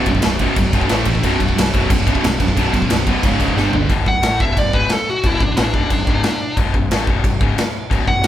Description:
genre	heavy metal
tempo	180 BPM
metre	4/4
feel	straight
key	B minor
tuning	A4 = 445 Hz
part	distorted electric guitar	riff	0.0-3.9 s	B1 to A3	-21 LUFS	right 4 dB	distortion
part	heavy high-gain guitar	riff	0.0-8.3 s	B1 to A3	-23 LUFS	left 6 dB	distortion
part	high-gain distorted guitar	riff	0.0-3.9 s	B1 to A3	-23 LUFS	left 1 dB	distortion
part	fuzz picked electric bass	bass	0.1-8.3 s	B0 to A1	-22 LUFS	equal	overdrive
part	big rock drum kit	drums	0.1-8.3 s	crash cymbal, kick drum, snare drum, toms	-18 LUFS	equal	none
part	high-gain lead guitar	melody	4.1-8.3 s	D4 to F#5	-19 LUFS	equal	distortion
room	light reverb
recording	band playing live in one room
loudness	-14 LUFS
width	side -12 dB against mid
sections	0.0-3.9 A section; 3.9-8.3 B section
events	drum fill 3.6-3.9; lead electric guitar solo 3.9-8.3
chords	0.0 B5; 0.9 A5; 1.2 B5; 3.2 C#5; 3.6 G5; 3.9 Bm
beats	0.24 0.57 0.91 | 1.24 1.57 1.91 2.24 | 2.57 2.90 3.24 3.57 | 3.91 4.24 4.57 4.91 | 5.24 5.58 5.91 6.24 | 6.58 6.91 7.24 7.58 | 7.91 8.24

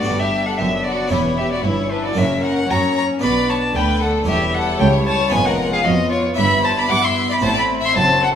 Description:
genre	classical, baroque-style concerto movement with solo episodes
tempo	114 BPM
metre	4/4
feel	straight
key	unclear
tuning	A4 = 440 Hz
part	warm chamber violin section	melody	0.0-8.4 s	C#4 to F#4	-29 LUFS	left 4 dB	none
part	warm violin	melody	0.0-8.3 s	B4 to D6	-20 LUFS	left 1 dB	none
part	bright symphonic violin section	second line	0.0-8.3 s	D4 to F#5	-23 LUFS	left 3 dB	none
part	dark studio viola section	accompaniment	0.0-8.4 s	G3 to E4	-25 LUFS	left 1 dB	none
part	harpsichord	accompaniment	0.0-8.4 s	C#2 to G#4	-25 LUFS	equal	none
part	rich chamber cello section	bass	0.0-8.4 s	C#2 to G3	-24 LUFS	right 3 dB	none
part	rich chamber double bass section	bass	0.0-8.4 s	E1 to G2	-24 LUFS	right 2 dB	none
room	wet recital hall reverb, RT60 1.4 s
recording	minimal, uncompressed stereo recording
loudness	-15 LUFS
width	side -8 dB against mid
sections	0.0-8.4 A section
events	none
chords	0.1 G; 1.1 C#dim/E; 2.2 F#; 3.2 Bm; 4.3 C#dim/E; 5.3 C#7/E#; 6.4 Em/G; 7.4 F#m7b5/A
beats	| 0.06 0.59 1.11 1.64 | 2.17 2.70 3.22 3.75 | 4.28 4.81 5.33 5.86 | 6.38 6.91 7.43 7.96

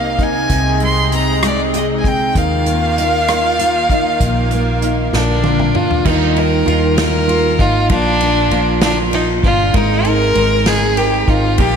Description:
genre	six-eight pop ballad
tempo	65 BPM (dotted quarters)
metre	6/8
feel	straight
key	Eb major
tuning	A4 = 443 Hz
part	clear violin	melody	0.0-11.8 s	D4 to C6	-17 LUFS	equal	slapback echo, tape echo
part	nylon-string guitar	accompaniment	0.0-11.8 s	Bb2 to Bb4	-19 LUFS	equal	double-tracked left and right, slapback echo
part	lush unison pad	sustained chords	0.0-6.0 s	C3 to F4	-21 LUFS	right 1 dB	chorus
part	vintage muted fingered electric bass	bass	0.0-11.8 s	G1 to Eb2	-19 LUFS	equal	none
part	unplugged drum kit	drums	0.2-11.7 s	crash cymbal, hi-hat, kick drum, ride cymbal, rim click, snare drum, toms	-19 LUFS	equal	none
part	twelve-string electric guitar	arpeggios	6.0-11.8 s	Bb2 to Bb4	-21 LUFS	right 8 dB	slapback echo, tape echo
room	moderate lush hall reverb, RT60 2.1 s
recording	big arena sound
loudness	-12 LUFS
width	side -7 dB against mid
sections	0.0-6.0 A section; 6.0-11.8 B section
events	drum fill 5.1-6.0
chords	0.5 Ab/C; 2.3 Ebsus2; 4.2 Bbsus4; 5.1 Bb; 6.0 Ebadd9; 7.9 Bb; 9.7 Abadd9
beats	| 0.50 1.42 | 2.35 3.27 | 4.20 5.12 | 6.05 6.97 | 7.90 8.82 | 9.74 10.67 | 11.59

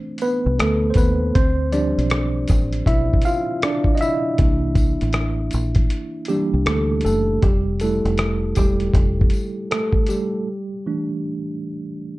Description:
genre	lo-fi hip hop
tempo	79 BPM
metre	4/4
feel	swing 62% on 16ths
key	unclear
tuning	A4 = 439 Hz
part	tine electric piano	accompaniment	0.0-12.2 s	E3 to F5	-22 LUFS	right 1 dB	medium stereo tremolo, low-pass filter, plate reverb
part	dusty soul sampler-style drum kit	drums	0.2-10.3 s	hi-hat, kick drum, rim click	-19 LUFS	equal	vintage 12-bit sampler grit
part	tambourine	percussion	0.2-10.3 s	none	-42 LUFS	left 6 dB	none
part	deep dub fingered electric bass	bass	0.5-9.3 s	E1 to Eb2	-22 LUFS	equal	none
room	light reverb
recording	dark, warm production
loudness	-18 LUFS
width	side -19 dB against mid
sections	0.0-12.2 A section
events	tine electric piano solo 0.0-12.2; break 10.5-12.2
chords	0.0 C69; 1.4 Dm11; 4.4 C9; 7.4 Fmaj9; 10.5 Emadd11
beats	0.59 | 1.35 2.11 2.87 3.63 | 4.39 5.15 5.91 6.67 | 7.43 8.19 8.95 9.71 | 10.47 11.23 11.99

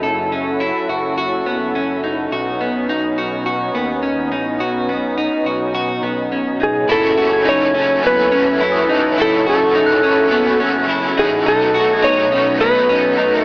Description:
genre	dream pop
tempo	105 BPM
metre	4/4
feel	straight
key	F# dorian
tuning	A4 = 439 Hz
part	lush unison pad	sustained chords	0.0-13.4 s	F#3 to G#5	-21 LUFS	equal	chorus
part	clean electric guitar	arpeggios	0.0-13.4 s	B3 to A4	-19 LUFS	equal	lush chorus, tape echo
part	fat analog bass	bass	0.0-13.4 s	E1 to D#2	-28 LUFS	equal	transformer saturation
part	electric slide guitar	melody	6.6-13.4 s	G#4 to C#5	-15 LUFS	equal	tape echo
part	crunchy overdriven guitar	accompaniment	6.9-13.4 s	F#2 to F#4	-22 LUFS	equal	tremolo, ensemble chorus
part	glockenspiel with rubber mallets	texture	7.3-13.4 s	D#6 to A6	-25 LUFS	equal	tape echo
room	moderate huge ambient reverb, RT60 4.6 s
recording	worn, warbling old tape, cassette tape, warbly pitch drift, small speaker sound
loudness	-14 LUFS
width	side -30 dB against mid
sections	0.0-6.9 A section; 6.9-13.4 B section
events	none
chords	0.0 F#m7; 2.3 Badd9; 6.9 F#m7; 11.5 B7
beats	| 0.03 0.60 1.18 1.75 | 2.32 2.89 3.46 4.03 | 4.60 5.17 5.75 6.32 | 6.89 7.46 8.03 8.60 | 9.18 9.75 10.32 10.89 | 11.46 12.03 12.60 13.18

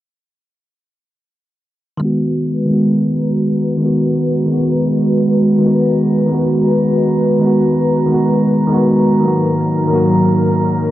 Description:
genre	future garage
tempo	133 BPM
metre	4/4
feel	swing 65% on 16ths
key	G# minor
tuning	A4 = 440 Hz
part	bright tine electric piano	accompaniment	2.0-10.9 s	D#3 to F#4	-14 LUFS	equal	analog delay
part	airy breathy pad	sustained chords	2.3-10.9 s	G#2 to B4	-16 LUFS	equal	chorus, vintage 12-bit sampler grit
part	drifting glass-harmonics texture	texture	4.7-10.9 s	A#5	-27 LUFS	right 3 dB	chorus, built-in reverb
part	shaker	drums	9.6-10.6 s	none	-56 LUFS	right 3 dB	none
room	moderate recital hall reverb, RT60 1.3 s, digital ambience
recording	dry, gritty hardware recording, low-pass filter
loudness	-12 LUFS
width	side -14 dB against mid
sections	2.0-10.9 A section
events	filter sweep 2.0-10.9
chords	2.0 G#m7; 9.2 D#m/G#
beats	| 2.02 2.47 2.92 3.37 | 3.82 4.27 4.72 5.18 | 5.63 6.08 6.53 6.98 | 7.43 7.88 8.33 8.79 | 9.24 9.69 10.14 10.59

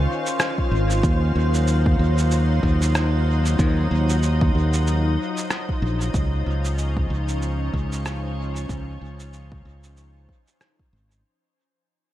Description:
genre	ambient dub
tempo	94 BPM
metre	4/4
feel	swing 59% on 16ths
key	unclear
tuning	A4 = 439 Hz
part	soft additive organ-like pad	sustained chords	0.0-11.2 s	Eb3 to C5	-26 LUFS	left 1 dB	ensemble chorus, built-in reverb
part	modern bright fingered electric bass	bass	0.0-11.2 s	Ab1 to Eb2	-21 LUFS	equal	none
part	electronic shaker and rim click	drums	0.3-11.2 s	none	-28 LUFS	right 1 dB	dub echo
part	electronic kick drum	drums	0.6-10.9 s	none	-23 LUFS	equal	overdrive
room	digital ambience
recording	vinyl crackle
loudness	-19 LUFS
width	side -13 dB against mid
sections	0.0-11.2 A section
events	fade-out 4.4-11.2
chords	0.0 Dbmaj9; 1.0 Ebm69; 6.1 Dbmaj9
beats	0.40 | 1.04 1.67 2.31 2.95 | 3.59 4.23 4.87 5.50 | 6.14 6.78 7.42 8.06 | 8.70 9.33 9.97 10.61

